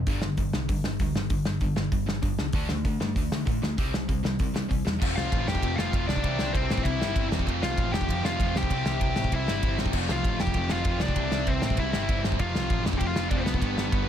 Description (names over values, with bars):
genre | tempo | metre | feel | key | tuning
punk rock | 195 BPM | 4/4 | straight | unclear | A4 = 440 Hz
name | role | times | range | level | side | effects
distorted electric guitar | riff | 0.0-14.1 s | F2 to D4 | -31 LUFS | left 1 dB | distortion
hollow-body short-scale picked electric bass | bass | 0.0-14.1 s | F1 to D3 | -31 LUFS | equal | none
loose indie drum kit | drums | 0.1-14.0 s | crash cymbal, hi-hat, kick drum, ride cymbal, snare drum | -28 LUFS | equal | none
biting overdriven guitar | riff | 5.0-14.1 s | C3 to G4 | -33 LUFS | equal | none
dark smooth lead guitar | melody | 5.2-14.1 s | B3 to G5 | -31 LUFS | left 1 dB | overdrive
room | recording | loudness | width
little or no reverb | none | -24 LUFS | side -9 dB against mid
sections
0.0-5.0 A section; 5.0-14.1 B section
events
none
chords
0.1 G5; 2.5 D5; 3.8 C5; 5.0 F; 6.2 C; 7.5 F; 8.7 C; 9.9 F; 11.2 C; 12.4 F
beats
| 0.07 0.38 0.69 1.00 | 1.31 1.62 1.93 2.24 | 2.55 2.85 3.16 3.47 | 3.78 4.09 4.40 4.71 | 5.01 5.32 5.63 5.94 | 6.25 6.55 6.86 7.17 | 7.47 7.78 8.09 8.40 | 8.70 9.01 9.32 9.63 | 9.93 10.24 10.55 10.86 | 11.16 11.47 11.78 12.08 | 12.39 12.70 13.01 13.31 | 13.62 13.93